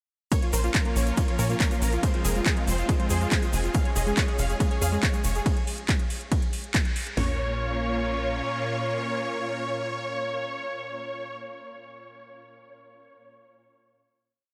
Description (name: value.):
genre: uplifting trance.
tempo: 140 BPM.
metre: 4/4.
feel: straight.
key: Bb minor.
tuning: A4 = 439 Hz.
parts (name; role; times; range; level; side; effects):
dense compressed supersaw; melody; 0.3-11.4 s; F4 to F5; -35 LUFS; equal; sidechain pumping, analog delay.
analog string pad; sustained chords; 0.3-11.4 s; Bb2 to F4; -36 LUFS; equal; ensemble chorus, sidechain pumping.
analog pluck; arpeggios; 0.3-7.4 s; Ab3 to Db5; -38 LUFS; equal; chorus, cassette tape, sidechain pumping, delay.
house drum kit; drums; 0.3-7.3 s; hi-hat, kick drum, snare drum, toms; -28 LUFS; equal; overdrive.
house drum kit; drums; 0.3-7.2 s; handclaps, hi-hat, ride cymbal; -35 LUFS; equal; overdrive.
egg shaker; percussion; 0.3-5.4 s; none; -39 LUFS; equal; none.
tight sequencer bass; bass; 0.5-8.4 s; F1 to Bb2; -30 LUFS; equal; sidechain pumping.
room: moderate huge ambient reverb, RT60 8.0 s.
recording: dreamy mix soaked in reverb.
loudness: -26 LUFS.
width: mono.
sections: 0.3-7.2 drop; 7.2-10.6 final chord.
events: drop 0.3-7.2; band accent 6.7.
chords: 0.3 Bbm; 2.0 Fm; 3.7 Db/F; 5.5 N.C.; 7.2 Bbm.